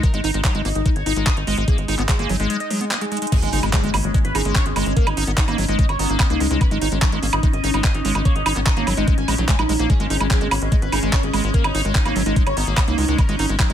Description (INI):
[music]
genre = psychedelic trance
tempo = 146 BPM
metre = 4/4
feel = straight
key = unclear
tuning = A4 = 440 Hz
[part]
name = overdriven synth lead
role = melody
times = 0.0-13.7 s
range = G#3 to G#5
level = -26 LUFS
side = equal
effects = phaser, sidechain pumping, digital delay
[part]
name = evolving wavetable pad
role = sustained chords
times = 0.0-13.7 s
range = C#4 to D#4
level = -28 LUFS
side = left 1 dB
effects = ensemble chorus, built-in reverb, phaser, sidechain pumping
[part]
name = liquid acid bass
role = riff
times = 0.0-13.7 s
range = F#3 to D#4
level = -26 LUFS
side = right 1 dB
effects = chorus, auto-pan, sidechain pumping, tape echo
[part]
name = electronic kick drum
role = drums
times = 0.0-13.7 s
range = none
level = -18 LUFS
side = equal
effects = studio reverb
[part]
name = garage drum kit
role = drums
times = 0.0-13.7 s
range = crash cymbal, handclaps, hi-hat, woodblock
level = -24 LUFS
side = right 2 dB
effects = studio reverb
[part]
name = tight sequencer bass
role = bass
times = 0.1-13.7 s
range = G#1 to C#2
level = -23 LUFS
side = equal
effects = tube saturation
[part]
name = impact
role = sound effects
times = 3.3-5.0 s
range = none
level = -30 LUFS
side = equal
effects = none
[sound]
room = little or no reverb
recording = none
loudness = -17 LUFS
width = side -10 dB against mid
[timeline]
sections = 0.0-3.3 A section; 3.3-13.7 B section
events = break 2.5-3.3; drum fill 3.1; drop 3.3-13.7; impact 3.3-5.0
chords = 0.0 G#5